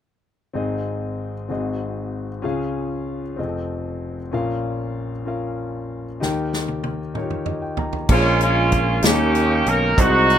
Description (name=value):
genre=slow gospel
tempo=64 BPM (dotted quarters)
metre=6/8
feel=straight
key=Ab major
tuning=A4 = 438 Hz
part: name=clear grand piano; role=accompaniment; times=0.5-10.4 s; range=F1 to Bb5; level=-24 LUFS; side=left 2 dB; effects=none
part: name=natural country drum kit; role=drums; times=6.2-10.4 s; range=crash cymbal, hi-hat, kick drum, snare drum, toms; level=-22 LUFS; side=equal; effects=none
part: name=clear horn section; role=melody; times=8.1-10.4 s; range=Ab3 to Bb4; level=-18 LUFS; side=right 2 dB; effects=slapback echo
part: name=tonewheel organ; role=sustained chords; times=8.1-10.4 s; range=Ab3 to Db6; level=-26 LUFS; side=right 3 dB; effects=slow rotary speaker, chorus vibrato
part: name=modern bright fingered electric bass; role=bass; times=8.1-10.4 s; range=Bb1 to Eb2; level=-21 LUFS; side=right 1 dB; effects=none
room=little or no reverb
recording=rough home demo mix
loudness=-20 LUFS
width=side -9 dB against mid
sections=0.6-8.1 A section; 8.1-10.4 B section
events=drum fill 6.2-8.1; grand piano fill 7.2-8.1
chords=0.6 Ab; 1.5 Ab7; 2.4 Db; 3.4 F7; 4.3 Bbm; 6.2 Eb; 8.1 Bbm7; 9.0 Eb7